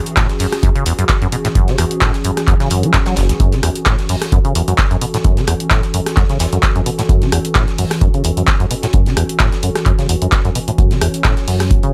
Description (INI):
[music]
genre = acid house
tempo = 130 BPM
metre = 4/4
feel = swing 54% on 16ths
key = F# minor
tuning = A4 = 440 Hz
[part]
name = warbly tape-like pad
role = sustained chords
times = 0.0-11.9 s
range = E3 to C#5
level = -26 LUFS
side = equal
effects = chorus, built-in reverb, vintage 12-bit sampler grit, sidechain pumping
[part]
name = deep reggae drum kit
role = drums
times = 0.1-11.8 s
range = hi-hat, snare drum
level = -33 LUFS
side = equal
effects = high-pass filter on hats, high-pass filter on snare, high-pass filter on room
[part]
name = punchy analog drum machine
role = drums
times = 0.1-11.9 s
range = handclaps, hi-hat, rim click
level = -22 LUFS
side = equal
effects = none
[part]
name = acid bass, saw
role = riff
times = 0.2-11.9 s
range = F#1 to F#3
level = -20 LUFS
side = equal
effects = analog chorus, sidechain pumping, tape echo
[part]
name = electronic kick drum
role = drums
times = 0.2-11.8 s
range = none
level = -17 LUFS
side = equal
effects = none
[sound]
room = light reverb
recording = none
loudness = -15 LUFS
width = mono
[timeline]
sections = 0.0-11.9 A section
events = none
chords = 0.0 F#m7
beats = 0.17 0.63 1.09 | 1.55 2.02 2.48 2.94 | 3.40 3.86 4.32 4.78 | 5.25 5.71 6.17 6.63 | 7.09 7.55 8.02 8.48 | 8.94 9.40 9.86 10.32 | 10.78 11.25 11.71